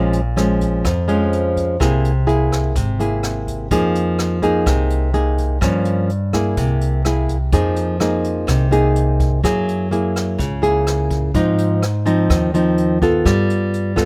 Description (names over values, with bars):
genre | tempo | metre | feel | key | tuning
bossa nova | 126 BPM | 4/4 | straight | F minor | A4 = 440 Hz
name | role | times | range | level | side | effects
nylon-string guitar | accompaniment | 0.0-14.1 s | F2 to A4 | -20 LUFS | equal | none
upright bass | bass | 0.0-14.1 s | G#1 to Ab2 | -22 LUFS | equal | none
jazz brush drum kit | drums | 0.1-14.1 s | hi-hat, kick drum, rim click | -27 LUFS | equal | none
room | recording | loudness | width
little or no reverb | close, detailed microphones | -18 LUFS | mono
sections
0.0-7.5 A section; 7.5-14.1 B section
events
none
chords
0.0 Bbm7; 1.8 Caug7; 3.7 Fm7; 5.6 Gm7b5; 6.6 Caug7; 7.5 Fm7; 9.4 Gb9; 11.3 Ab6; 13.3 G9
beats
0.37 0.84 1.32 | 1.80 2.28 2.75 3.23 | 3.71 4.19 4.66 5.14 | 5.62 6.10 6.57 7.05 | 7.53 8.01 8.48 8.96 | 9.44 9.91 10.39 10.87 | 11.35 11.82 12.30 12.78 | 13.25 13.73